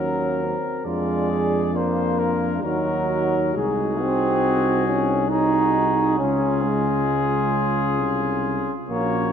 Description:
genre	classical, hymn-like piece for brass band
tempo	67 BPM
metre	3/4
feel	uneven beats, rubato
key	Db major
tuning	A4 = 440 Hz
part	clear cornet	melody	0.0-9.3 s	Ab4 to D5	-28 LUFS	left 8 dB	none
part	mellow flugelhorn	second line	0.0-9.3 s	F4 to Bb4	-29 LUFS	right 6 dB	none
part	warm euphonium	accompaniment	0.0-9.3 s	C4 to Eb4	-29 LUFS	left 4 dB	none
part	warm trombone	accompaniment	0.0-9.3 s	Gb3 to Eb4	-23 LUFS	right 2 dB	none
part	mellow tuba	bass	0.0-9.3 s	Bb1 to F2	-26 LUFS	equal	none
room	wet church reverb, RT60 2.6 s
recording	nothing above 11.0 kHz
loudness	-19 LUFS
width	side -8 dB against mid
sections	0.0-9.3 A section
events	none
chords	0.0 Ebm; 0.9 Bb7/F; 2.6 Ebm; 3.6 Ab7/C; 6.2 Db

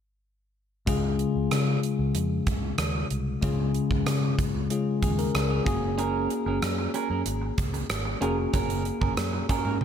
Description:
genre	1980s-style pop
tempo	94 BPM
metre	4/4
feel	straight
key	Db major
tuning	A4 = 439 Hz
part	bell-like tine electric piano	accompaniment	0.9-9.8 s	Db3 to Bb4	-28 LUFS	left 4 dB	wide subtle chorus
part	vintage muted fingered electric bass	bass	0.9-9.8 s	F1 to Db3	-30 LUFS	right 1 dB	none
part	gated 80s drum kit	drums	0.9-9.8 s	hi-hat, kick drum, rim click, toms	-29 LUFS	right 1 dB	none
part	clean electric guitar	riff	6.0-9.8 s	Db4 to Bb4	-30 LUFS	right 7 dB	wide subtle chorus, ping-pong delay
room	light reverb, small room reverb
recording	none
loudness	-24 LUFS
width	side -8 dB against mid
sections	0.9-9.8 A section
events	none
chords	0.9 Db; 5.7 Gbadd9

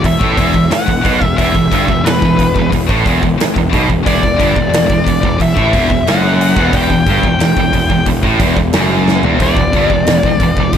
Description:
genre	heavy metal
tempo	90 BPM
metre	4/4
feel	straight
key	E minor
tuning	A4 = 440 Hz
part	heavy high-gain guitar	riff	0.0-10.8 s	E2 to B2	-16 LUFS	right 10 dB	distortion
part	scooped high-gain guitar	riff	0.0-10.8 s	E2 to B2	-18 LUFS	left 12 dB	distortion
part	fuzz picked electric bass	bass	0.0-10.8 s	E1 to B1	-17 LUFS	equal	overdrive
part	big rock drum kit	drums	0.0-10.8 s	hi-hat, kick drum, snare drum, toms	-16 LUFS	equal	none
part	high-gain lead guitar	melody	0.1-10.8 s	B4 to G5	-17 LUFS	left 3 dB	distortion, ping-pong delay
room	studio ambience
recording	none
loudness	-10 LUFS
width	side -8 dB against mid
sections	0.0-10.8 A section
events	drum fill 9.1-9.4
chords	0.0 Em

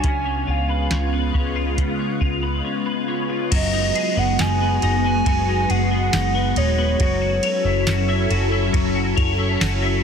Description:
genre	dream pop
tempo	69 BPM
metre	4/4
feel	straight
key	unclear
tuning	A4 = 441 Hz
part	warbly nostalgic lead	melody	0.0-9.2 s	C#5 to G#5	-25 LUFS	right 2 dB	chorus, ping-pong delay
part	soft string machine	sustained chords	0.0-10.0 s	C#3 to A4	-24 LUFS	equal	phaser, ensemble chorus
part	twelve-string electric guitar	arpeggios	0.0-10.0 s	C#3 to C#5	-25 LUFS	left 5 dB	ensemble chorus, ping-pong delay
part	vintage muted picked electric bass	bass	0.0-10.0 s	D#1 to C#2	-22 LUFS	equal	none
part	soft vintage rhythm box	drums	0.0-9.8 s	crash cymbal, hi-hat, kick drum, ride cymbal, snare drum, tambourine	-25 LUFS	equal	none
room	light reverb, digital ambience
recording	dense, heavily limited modern master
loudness	-18 LUFS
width	side -7 dB against mid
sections	0.0-3.5 A section; 3.5-10.0 B section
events	none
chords	0.0 C#7; 3.5 G#m7/F#; 7.0 F#m7

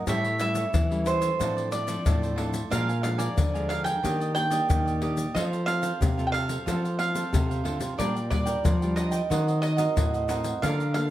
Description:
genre	samba and choro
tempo	91 BPM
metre	4/4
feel	straight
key	Bb major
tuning	A4 = 440 Hz
part	mandolin	melody	0.0-11.1 s	C5 to G5	-29 LUFS	right 3 dB	none
part	cavaquinho	accompaniment	0.0-11.0 s	D4 to Bb5	-36 LUFS	right 6 dB	none
part	nylon-string guitar	accompaniment	0.0-11.1 s	F2 to Bb4	-33 LUFS	left 2 dB	none
part	nylon-string guitar	bass	0.1-11.1 s	A2 to F3	-29 LUFS	equal	none
part	tube shaker, surdo and pandeiro	percussion	0.1-11.1 s	none	-28 LUFS	left 2 dB	none
room	moderate large studio reverb, RT60 0.8 s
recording	none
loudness	-24 LUFS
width	side -13 dB against mid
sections	0.0-11.1 A section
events	none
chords	0.1 A7; 1.4 Dm7/A; 2.7 Bb7; 4.0 Ebmaj7; 5.4 F; 8.0 Bb6; 9.3 Ebm6

